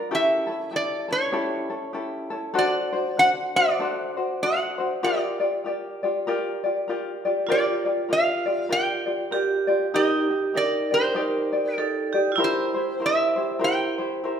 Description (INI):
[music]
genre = Hawaiian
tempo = 98 BPM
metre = 4/4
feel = swing 60% on 8ths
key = G minor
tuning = A4 = 440 Hz
[part]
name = metal-body resonator slide guitar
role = melody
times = 0.0-14.4 s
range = C5 to G5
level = -24 LUFS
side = equal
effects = none
[part]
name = tenor ukulele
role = accompaniment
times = 0.0-14.4 s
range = C#4 to D5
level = -25 LUFS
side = left 2 dB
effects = none
[part]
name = vibraphone with hard mallets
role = second line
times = 7.5-14.4 s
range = E4 to Bb4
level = -27 LUFS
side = right 5 dB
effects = none
[sound]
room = wet recital hall reverb, RT60 1.6 s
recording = minimal, uncompressed stereo recording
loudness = -22 LUFS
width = side -8 dB against mid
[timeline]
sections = 0.0-14.4 A section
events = none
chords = 0.1 A7; 2.6 D7; 5.0 Gm7; 9.9 Ebmaj7; 12.4 C7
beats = | 0.11 0.72 1.34 1.95 | 2.56 3.18 3.79 4.40 | 5.02 5.63 6.25 6.86 | 7.47 8.09 8.70 9.31 | 9.93 10.54 11.15 11.77 | 12.38 13.00 13.61 14.22